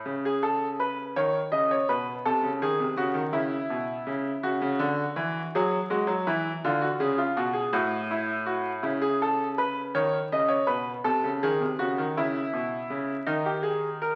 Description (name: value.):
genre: classical, baroque-style two-part invention for grand piano.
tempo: 54 BPM (dotted quarters).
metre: 6/8.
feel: straight.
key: unclear.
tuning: A4 = 438 Hz.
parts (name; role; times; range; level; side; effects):
bright concert grand piano; solo; 0.0-14.2 s; A2 to D#5; -27 LUFS; equal; none.
room: wet recital hall reverb, RT60 1.4 s.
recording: very old 78 rpm record, vinyl crackle.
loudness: -27 LUFS.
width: mono.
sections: 0.0-13.3 A section.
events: none.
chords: 0.1 C#5; 1.2 Badd9; 2.3 Cdim7; 3.3 C#m; 4.4 F#5/C#; 5.5 Eadd9; 6.6 Fdim7; 7.7 F#m/A; 8.8 C#m; 10.0 Badd9; 11.1 Cdim7; 12.2 C#m; 13.3 D#.